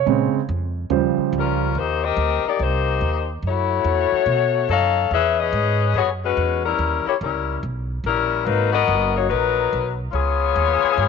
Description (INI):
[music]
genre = jazz, big band swing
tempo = 143 BPM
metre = 4/4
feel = swing 65% on 8ths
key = unclear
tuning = A4 = 440 Hz
[part]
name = warm grand piano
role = accompaniment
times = 0.0-1.7 s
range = Db3 to Db5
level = -20 LUFS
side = right 12 dB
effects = none
[part]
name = upright bass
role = bass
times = 0.0-11.1 s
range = Gb1 to B2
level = -24 LUFS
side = right 2 dB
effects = none
[part]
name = mellow saxophone section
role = melody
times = 1.4-11.1 s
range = Gb3 to F5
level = -19 LUFS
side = left 10 dB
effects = none
[sound]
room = light reverb, small room ambience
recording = 1960s-style stereo with parts hard left and right, nothing above 7.9 kHz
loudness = -18 LUFS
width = side -5 dB against mid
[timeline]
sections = 0.0-1.7 A section; 1.7-11.1 B section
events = grand piano solo 0.0-1.7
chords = 0.1 Bbm7; 0.9 Eb13; 1.7 Eb6; 3.4 Gbm7; 4.3 B9; 5.1 E69; 6.8 Eb7b9; 8.5 Abm9; 10.1 Db9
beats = | 0.07 0.49 0.91 1.33 | 1.75 2.17 2.59 3.01 | 3.43 3.85 4.27 4.69 | 5.11 5.53 5.95 6.37 | 6.79 7.21 7.63 8.05 | 8.47 8.89 9.31 9.73 | 10.15 10.57 10.98